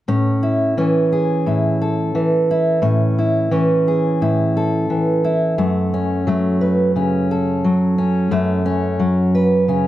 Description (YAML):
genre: folk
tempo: 87 BPM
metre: 4/4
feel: straight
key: A major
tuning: A4 = 438 Hz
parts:
  - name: fingerpicked steel-string acoustic guitar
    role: accompaniment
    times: 0.1-9.9 s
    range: F#2 to B4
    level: -15 LUFS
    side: equal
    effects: none
room: moderate large studio reverb, RT60 1.2 s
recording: none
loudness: -15 LUFS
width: side -14 dB against mid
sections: 0.1-9.9 A section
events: none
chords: 0.1 A; 5.6 F#m